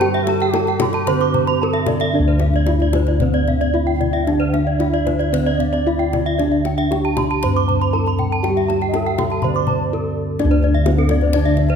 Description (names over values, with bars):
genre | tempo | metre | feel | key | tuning
Balinese gamelan | 113-127 BPM | 4/4 | straight | D slendro | A4 = 440 Hz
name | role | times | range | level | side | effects
gamelan-type bronze metallophone | melody | 0.0-11.8 s | C4-45c to C5-45c | -22 LUFS | equal | none
bansuri | second line | 0.0-11.8 s | G4-42c to G5-29c | -28 LUFS | left 3 dB | none
gamelan-type bronze metallophone | accompaniment | 0.0-11.8 s | D3 to C4-45c | -26 LUFS | right 6 dB | none
gamelan-type bronze metallophone | arpeggios | 0.0-11.7 s | C5-45c to C6-45c | -25 LUFS | left 3 dB | none
gamelan-type bronze metallophone | arpeggios | 0.0-11.8 s | A4+25c to D6 | -24 LUFS | right 5 dB | none
gamelan-type bossed gongs | bass | 0.0-11.8 s | D2 to G4-35c | -19 LUFS | left 1 dB | none
kendang | percussion | 0.0-11.7 s | none | -26 LUFS | left 6 dB | none
room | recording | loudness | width
moderate scoring stage reverb, RT60 1.9 s | none | -15 LUFS | side -7 dB against mid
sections
0.0-10.4 A section; 10.4-11.8 B section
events
break 9.7-10.4; drum fill 9.8-10.4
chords
none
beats
| 0.01 0.55 1.08 1.61 | 2.14 2.67 3.20 3.73 | 4.26 4.79 5.33 5.86 | 6.39 6.91 7.43 7.95 | 8.45 8.95 9.44 9.92 | 10.40 10.87 11.35